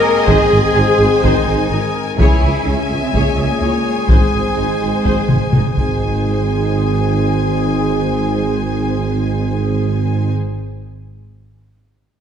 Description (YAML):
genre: cinematic, epic orchestral film score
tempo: 126 BPM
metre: 4/4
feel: straight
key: Ab major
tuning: A4 = 439 Hz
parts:
  - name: rich symphonic violin section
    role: melody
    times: 0.0-10.3 s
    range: Ab5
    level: -25 LUFS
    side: left 2 dB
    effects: none
  - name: warm symphonic violin section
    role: second line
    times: 0.0-10.3 s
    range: Ab4 to Fb5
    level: -27 LUFS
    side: left 3 dB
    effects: none
  - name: warm French horn section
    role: sustained chords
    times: 0.0-10.3 s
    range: Ab3 to Eb4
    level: -25 LUFS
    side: left 4 dB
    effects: none
  - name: warm trombone section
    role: sustained chords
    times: 0.0-10.3 s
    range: Ab2 to Bb3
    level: -26 LUFS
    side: right 3 dB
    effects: none
  - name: dark trumpet section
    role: stabs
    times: 0.0-10.3 s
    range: Ab4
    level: -22 LUFS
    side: left 2 dB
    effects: none
  - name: dark symphonic cello section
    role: bass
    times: 0.0-10.3 s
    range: Ab3 to Bb4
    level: -22 LUFS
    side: equal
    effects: none
  - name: rich symphonic viola section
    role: accompaniment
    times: 0.3-10.3 s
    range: Eb4 to Db5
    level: -26 LUFS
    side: right 2 dB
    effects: none
  - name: dark tuba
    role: bass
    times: 0.3-10.3 s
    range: Ab1 to Db2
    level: -21 LUFS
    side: right 3 dB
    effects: none
  - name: rich symphonic double bass section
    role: bass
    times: 0.3-10.3 s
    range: Ab1 to Db2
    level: -21 LUFS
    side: right 2 dB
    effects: none
  - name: taiko ensemble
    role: drums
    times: 0.3-6.7 s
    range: none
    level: -16 LUFS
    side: left 1 dB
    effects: none
room: moderate scoring stage reverb, RT60 1.7 s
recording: dark, warm production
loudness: -13 LUFS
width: side -8 dB against mid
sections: 0.0-6.0 A section; 6.0-9.8 B section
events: drum fill 5.3-6.0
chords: 0.0 Ab; 2.2 Dbm; 4.1 Ab